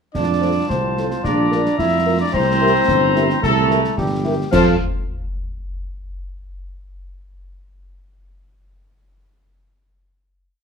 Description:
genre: military-style march for wind band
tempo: 110 BPM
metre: 2/4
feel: straight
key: F major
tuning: A4 = 440 Hz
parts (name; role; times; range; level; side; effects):
- dark trumpet section; melody; 0.1-4.7 s; G4 to F5; -21 LUFS; left 2 dB; none
- warm woodwind section; second line; 0.1-4.8 s; E4 to Bb5; -25 LUFS; left 1 dB; none
- mellow trombone section; sustained chords; 0.1-4.7 s; F3 to E4; -22 LUFS; right 1 dB; none
- dark tuba; bass; 0.1-4.8 s; G1 to F2; -20 LUFS; right 4 dB; none
- concert snare drum, clash cymbals and concert bass drum; drums; 0.2-4.8 s; none; -27 LUFS; left 1 dB; none
- mellow French horn section; accompaniment; 0.4-4.8 s; E4 to C5; -22 LUFS; left 3 dB; none
room: moderate large studio reverb, RT60 1.0 s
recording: none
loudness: -15 LUFS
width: side -6 dB against mid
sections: 0.1-4.5 A section; 4.5-5.6 final chord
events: none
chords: 0.1 F; 1.2 Bb; 2.3 C7; 4.5 F

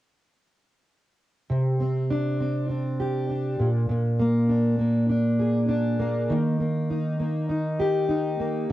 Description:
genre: pop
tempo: 100 BPM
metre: 4/4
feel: swing 60% on 16ths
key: C minor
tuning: A4 = 440 Hz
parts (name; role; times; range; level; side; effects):
- fingerpicked plugged-in steel-string acoustic guitar; accompaniment; 1.5-8.7 s; Bb2 to Ab4; -22 LUFS; equal; double-tracked left and right, cassette tape
room: wet small room reverb, RT60 0.5 s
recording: home recording on cassette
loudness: -22 LUFS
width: side -15 dB against mid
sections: 1.5-8.7 A section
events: none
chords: 1.5 Csus2; 3.6 Bb7; 6.3 Eb

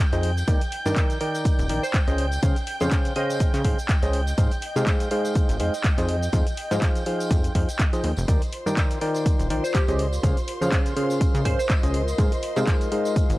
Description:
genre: piano house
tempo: 123 BPM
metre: 4/4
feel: swing 56% on 16ths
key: unclear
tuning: A4 = 440 Hz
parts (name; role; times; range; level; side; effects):
- muted chamber violin section; sustained chords; 0.0-13.4 s; C5 to G6; -34 LUFS; right 1 dB; sidechain pumping
- punchy analog drum machine; drums; 0.0-13.4 s; cabasa, handclaps, hi-hat; -33 LUFS; equal; overdrive
- warbly tape-like pad; texture; 1.7-13.4 s; F4 to Eb5; -34 LUFS; left 1 dB; chorus, built-in reverb, sidechain pumping
- percussive organ stab; riff; 0.1-13.4 s; Db3 to G5; -27 LUFS; equal; chorus, sidechain pumping, analog delay
- plucky analog bass; bass; 0.1-13.4 s; Eb1 to Db3; -25 LUFS; equal; sidechain pumping
- tambourine; percussion; 0.1-13.4 s; none; -43 LUFS; right 2 dB; none
- electronic kick drum; drums; 0.5-13.3 s; none; -22 LUFS; equal; overdrive
- glassy wavetable pluck; melody; 1.8-3.6, 9.6-11.7 s; G4 to Eb5; -32 LUFS; right 1 dB; chorus, analog delay
room: digital ambience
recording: dry, gritty hardware recording, cassette tape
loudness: -20 LUFS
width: side -18 dB against mid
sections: 0.0-13.4 A section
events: none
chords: 0.5 Ebmaj7; 2.2 Dbmaj7; 4.4 Ab6; 6.1 Fm7; 8.3 Ebmaj7; 10.0 Dbmaj7; 12.2 Ab6

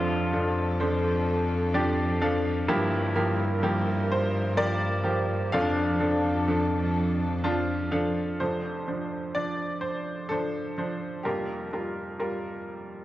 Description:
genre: acoustic folk-pop ballad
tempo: 42 BPM (dotted quarters)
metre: 6/8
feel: straight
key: F major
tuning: A4 = 440 Hz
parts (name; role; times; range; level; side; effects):
- bright upright piano; melody; 0.0-13.0 s; F1 to A5; -27 LUFS; equal; none
- pedal steel guitar; second line; 0.0-7.9 s; D4 to F4; -33 LUFS; left 2 dB; none
- warm chamber string section; sustained chords; 0.0-8.4 s; F3 to Bb4; -36 LUFS; left 1 dB; none
- warm cello; bass; 0.0-8.4 s; F2 to G2; -29 LUFS; equal; none
- vibraphone with medium mallets; arpeggios; 0.8-6.0 s; A4 to C5; -34 LUFS; right 1 dB; none
room: moderate recital hall reverb, RT60 1.6 s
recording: worn, warbling old tape, cassette tape, warbly pitch drift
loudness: -25 LUFS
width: side -14 dB against mid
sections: 0.0-8.4 A section; 8.4-13.0 B section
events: upright piano fill 1.3-2.7, 7.0-8.4, 12.7-13.0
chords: 0.0 F6; 2.7 Gm7; 5.5 F6; 11.3 Gm7/F

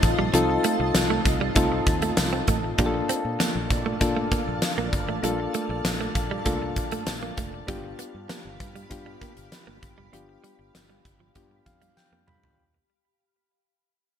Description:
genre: 1980s-style pop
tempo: 98 BPM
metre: 4/4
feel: straight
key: unclear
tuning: A4 = 441 Hz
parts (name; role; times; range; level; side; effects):
- soft electric-piano-like synth keys; accompaniment; 0.0-12.6 s; Bb3 to B5; -28 LUFS; left 2 dB; chorus
- granular cloud pad; sustained chords; 0.0-12.5 s; F4 to B5; -33 LUFS; left 1 dB; built-in reverb, analog chorus
- direct-recorded clean electric guitar; riff; 0.0-12.4 s; F3 to C4; -31 LUFS; right 6 dB; wide subtle chorus, ping-pong delay
- fingered electric bass; bass; 0.0-12.5 s; F1 to Bb2; -31 LUFS; equal; none
- gated 80s drum kit; drums; 0.0-12.6 s; hi-hat, kick drum, snare drum, tambourine, toms; -26 LUFS; equal; gated reverb
- tambourine; percussion; 1.0-12.1 s; none; -42 LUFS; right 10 dB; none
room: moderate plate reverb, RT60 1.6 s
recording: bright 1980s-style digital production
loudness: -22 LUFS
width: side -9 dB against mid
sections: 0.0-12.6 A section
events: fade-out 0.0-12.6; synth keys fill 11.4-12.6; drum fill 12.0-12.6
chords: 0.0 F7; 2.8 Bbmaj7; 7.7 G7

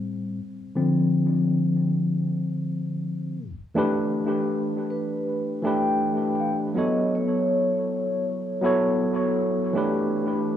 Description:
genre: hip hop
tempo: 80 BPM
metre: 4/4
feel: swing 60% on 16ths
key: E phrygian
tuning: A4 = 440 Hz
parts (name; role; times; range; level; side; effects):
- tine electric piano; accompaniment; 0.0-10.6 s; A2 to C#5; -23 LUFS; equal; medium stereo tremolo, cassette tape, low-pass filter, tape echo
- vibraphone with soft mallets; melody; 4.9-8.2 s; B4 to G5; -27 LUFS; left 1 dB; low-pass filter, tape echo
room: moderate echo chamber reverb, RT60 1.6 s, small room ambience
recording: echo-heavy mix, cassette tape, tape stop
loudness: -22 LUFS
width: side -10 dB against mid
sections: 0.0-3.8 A section; 3.8-10.6 B section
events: tine electric piano solo 0.0-3.8; tape stop 3.4-3.8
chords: 0.4 Dm7; 3.8 Em7; 6.8 F#m7; 9.8 A5

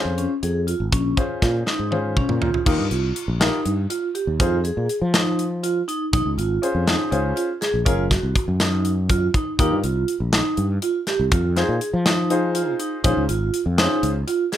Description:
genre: progressive instrumental, band music in an uneven meter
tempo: 243 BPM (eighths)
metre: 7/8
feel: straight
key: Bb minor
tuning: A4 = 441 Hz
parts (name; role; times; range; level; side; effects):
- warm baby grand piano; accompaniment; 0.0-14.1 s; Db4 to C5; -25 LUFS; left 3 dB; none
- sustaining fretless electric bass; bass; 0.1-14.2 s; Gb1 to F3; -23 LUFS; equal; none
- vibraphone with medium mallets; arpeggios; 0.2-14.6 s; Db4 to Ab4; -24 LUFS; right 3 dB; none
- tight metal drum kit; drums; 0.2-14.6 s; crash cymbal, hi-hat, kick drum, snare drum, toms; -22 LUFS; equal; none
room: light reverb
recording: none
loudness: -19 LUFS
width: side -11 dB against mid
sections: 0.0-2.7 A section; 2.7-14.6 B section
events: drum fill 1.7-2.7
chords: 0.0 Bbm9 (rootless); 0.9 Bbm7; 2.7 Ebadd9; 4.4 Fm7; 6.1 Bbm7 (rootless); 7.9 Gbmaj7(no3); 9.6 Ebadd9; 11.3 Fm7; 13.0 Bbm7 (rootless)

